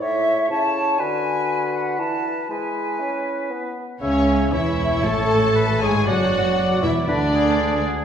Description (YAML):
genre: classical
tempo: 118 BPM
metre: 4/4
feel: straight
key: A major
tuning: A4 = 440 Hz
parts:
  - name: bright small flute group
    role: second line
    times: 0.0-3.5 s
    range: E5 to A5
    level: -23 LUFS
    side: equal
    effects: none
  - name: dark clarinet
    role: second line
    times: 0.0-7.8 s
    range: C#4 to A4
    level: -27 LUFS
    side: equal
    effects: none
  - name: warm oboe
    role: second line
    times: 0.0-8.0 s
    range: G#4 to E5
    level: -27 LUFS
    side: left 1 dB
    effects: none
  - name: mellow bassoon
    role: accompaniment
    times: 0.0-7.8 s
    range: A2 to C#4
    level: -27 LUFS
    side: right 2 dB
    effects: none
  - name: rich symphonic violin section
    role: melody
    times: 4.0-7.8 s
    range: C#5 to A5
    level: -26 LUFS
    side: left 3 dB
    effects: none
  - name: warm symphonic violin section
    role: second line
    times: 4.0-7.8 s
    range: C#4 to A4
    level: -27 LUFS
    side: left 1 dB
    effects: none
  - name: clear symphonic viola section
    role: accompaniment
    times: 4.0-7.8 s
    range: C#4 to A4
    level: -27 LUFS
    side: right 1 dB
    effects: none
  - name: dark French horn section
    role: sustained chords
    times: 4.0-7.8 s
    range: C#3 to A3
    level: -27 LUFS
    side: equal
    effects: none
  - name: rich studio double bass section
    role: bass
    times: 4.0-7.8 s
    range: E1 to D2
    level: -26 LUFS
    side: right 1 dB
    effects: none
  - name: rich symphonic cello section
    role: bass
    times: 4.0-7.8 s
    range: C#2 to A2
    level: -26 LUFS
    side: right 1 dB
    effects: none
room: wet recital hall reverb, RT60 1.7 s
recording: recorded in a church or concert hall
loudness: -18 LUFS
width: side -8 dB against mid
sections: 0.0-4.0 A section; 4.0-8.0 B section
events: none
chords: 0.0 A; 1.0 Bm/D; 2.0 E; 4.0 A; 6.1 E7